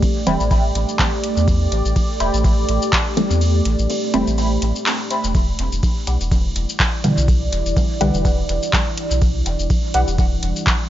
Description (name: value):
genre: dub techno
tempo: 124 BPM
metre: 4/4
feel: swing 56% on 16ths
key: A minor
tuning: A4 = 441 Hz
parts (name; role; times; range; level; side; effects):
- deep dark ambient pad; sustained chords; 0.0-10.9 s; G3 to D5; -24 LUFS; right 1 dB; chorus, built-in reverb, sidechain pumping
- filtered dub chord stab; stabs; 0.0-10.9 s; B2 to C4; -24 LUFS; equal; phaser, sidechain pumping, dub echo
- booming analog drum machine; drums; 0.0-10.8 s; handclaps, hi-hat, ride cymbal, shaker; -25 LUFS; equal; none
- electronic kick drum; drums; 0.0-10.8 s; none; -19 LUFS; equal; none
- filtered dub chord stab; riff; 0.3-10.0 s; G4 to B5; -26 LUFS; left 1 dB; phaser, ensemble chorus, sidechain pumping, dub echo
- warm sub bass; bass; 0.3-10.5 s; E1 to E2; -20 LUFS; equal; sidechain pumping
room: light reverb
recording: nothing above 7.5 kHz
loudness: -16 LUFS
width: side -12 dB against mid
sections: 0.0-10.9 A section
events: filter sweep on synth stab 0.0-10.9; kick drops out 3.4-5.3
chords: 0.0 Am7; 5.3 Em7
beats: 0.03 0.51 0.99 | 1.48 1.96 2.44 2.93 | 3.41 3.90 4.38 4.86 | 5.35 5.83 6.32 6.80 | 7.28 7.77 8.25 8.73 | 9.22 9.70 10.19 10.67